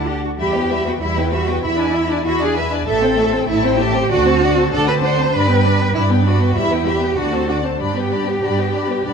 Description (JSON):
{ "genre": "quick classical-period movement for string orchestra", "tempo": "97 BPM", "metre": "4/4", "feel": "straight", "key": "G major", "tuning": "A4 = 440 Hz", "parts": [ { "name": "warm studio violin section", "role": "melody", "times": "0.0-9.1 s", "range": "F#5 to B5", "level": "-26 LUFS", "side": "left 6 dB", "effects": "none" }, { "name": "rich studio violin section", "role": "second line", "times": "0.0-9.1 s", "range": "B4 to F#5", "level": "-24 LUFS", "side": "left 5 dB", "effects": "none" }, { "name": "rich studio viola section", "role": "accompaniment", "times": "0.0-9.1 s", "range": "G3 to E4", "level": "-22 LUFS", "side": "left 2 dB", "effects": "none" }, { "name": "rich studio cello section", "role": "bass", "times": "0.0-9.1 s", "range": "E4 to C5", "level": "-19 LUFS", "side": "right 3 dB", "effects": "none" }, { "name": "rich studio double bass section", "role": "bass", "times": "0.0-9.1 s", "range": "A1 to G2", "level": "-20 LUFS", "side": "right 3 dB", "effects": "none" } ], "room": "moderate scoring stage reverb, RT60 2.0 s", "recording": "none", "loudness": "-15 LUFS", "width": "side -6 dB against mid", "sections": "0.0-9.1 A section", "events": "none", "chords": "0.4 Em; 1.6 E7; 2.9 Am7; 4.1 D7; 5.3 G; 6.6 Em; 7.2 D7; 7.8 G" }